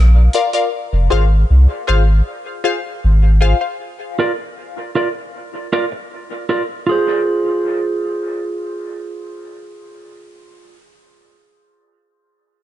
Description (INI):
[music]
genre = dub reggae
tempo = 78 BPM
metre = 4/4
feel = straight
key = F dorian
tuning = A4 = 441 Hz
[part]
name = warm sub bass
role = bass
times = 0.0-3.5 s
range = F1 to C2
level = -10 LUFS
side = equal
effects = none
[part]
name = filtered dub chord stab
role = stabs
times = 0.3-3.7 s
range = F4 to F5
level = -20 LUFS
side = left 5 dB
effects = phaser, dub echo
[part]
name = electronic hi-hat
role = drums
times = 0.3-0.7 s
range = none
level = -18 LUFS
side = equal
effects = none
[part]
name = clean electric guitar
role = accompaniment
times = 4.2-10.8 s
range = F4 to D5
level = -19 LUFS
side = right 2 dB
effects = dub echo
[sound]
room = digital ambience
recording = nothing above 10.5 kHz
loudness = -14 LUFS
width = side -13 dB against mid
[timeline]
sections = 0.0-6.9 A section; 6.9-10.0 B section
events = break 0.0-3.8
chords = 0.0 Bb; 0.7 Fm; 3.8 Bb; 6.9 Fm